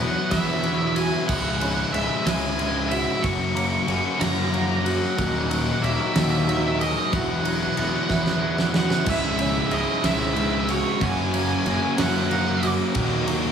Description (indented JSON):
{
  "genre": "post-rock",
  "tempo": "62 BPM (dotted quarters)",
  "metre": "6/8",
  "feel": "straight",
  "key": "C# dorian",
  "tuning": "A4 = 439 Hz",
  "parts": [
    { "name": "octave-fuzz lead guitar", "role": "melody", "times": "0.0-12.7 s", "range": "C#5 to C#6", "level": "-27 LUFS", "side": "right 4 dB", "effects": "distortion, analog delay" },
    { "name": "twangy electric guitar", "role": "arpeggios", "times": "0.0-13.5 s", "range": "C#2 to C#4", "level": "-33 LUFS", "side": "equal", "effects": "phaser, analog delay" },
    { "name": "sludgy distorted guitar", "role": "riff", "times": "0.0-13.5 s", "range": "C#2 to F#4", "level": "-26 LUFS", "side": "left 6 dB", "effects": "overdrive" },
    { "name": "fuzz fingered electric bass", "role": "bass", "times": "0.0-13.5 s", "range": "C#1 to F#2", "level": "-27 LUFS", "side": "right 1 dB", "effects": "overdrive" },
    { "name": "harpsichord", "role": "arpeggios", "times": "0.3-13.5 s", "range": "D#3 to G#4", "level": "-33 LUFS", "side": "right 8 dB", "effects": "analog delay" },
    { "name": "huge arena drum kit", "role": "drums", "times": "0.3-13.4 s", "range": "crash cymbal, kick drum, ride cymbal, snare drum", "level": "-27 LUFS", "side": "equal", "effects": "none" },
    { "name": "sludgy distorted guitar", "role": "riff", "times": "9.1-13.5 s", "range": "C#2 to F#4", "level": "-28 LUFS", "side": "right 14 dB", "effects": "overdrive" }
  ],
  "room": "light reverb, small room ambience",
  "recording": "studio reverb",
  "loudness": "-20 LUFS",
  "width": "side -7 dB against mid",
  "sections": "0.0-13.5 A section",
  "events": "drum fill 8.1-9.1",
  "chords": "0.0 Esus2; 1.3 C#m; 3.2 F#; 5.2 D#m; 7.1 Esus2; 9.1 C#m; 11.0 F#; 12.9 D#m"
}